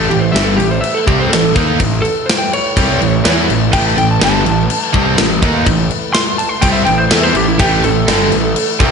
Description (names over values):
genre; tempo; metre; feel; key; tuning
hard rock; 124 BPM; 4/4; straight; unclear; A4 = 440 Hz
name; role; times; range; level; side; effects
lightly driven lead guitar; melody; 0.0-8.8 s; E4 to C6; -17 LUFS; equal; slapback echo
tonewheel organ; sustained chords; 0.0-8.9 s; A3 to B4; -27 LUFS; equal; none
cranked stack guitar; riff; 0.0-8.9 s; G2 to E4; -18 LUFS; right 10 dB; overdrive
high-gain distorted guitar; riff; 0.0-8.9 s; G2 to E4; -19 LUFS; left 11 dB; distortion
fuzz picked electric bass; bass; 0.0-8.9 s; G1 to E2; -18 LUFS; equal; overdrive
tight metal drum kit; drums; 0.1-8.9 s; crash cymbal, kick drum, snare drum; -16 LUFS; left 1 dB; none
room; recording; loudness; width
moderate recital hall reverb, RT60 1.4 s, small room ambience; big arena sound, nothing above 10.7 kHz; -11 LUFS; side -6 dB against mid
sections
0.0-8.9 A section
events
lead electric guitar solo 0.0-8.9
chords
0.0 A5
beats
0.35 0.83 1.32 | 1.80 2.29 2.77 3.25 | 3.73 4.22 4.70 5.18 | 5.67 6.15 6.63 7.11 | 7.59 8.08 8.56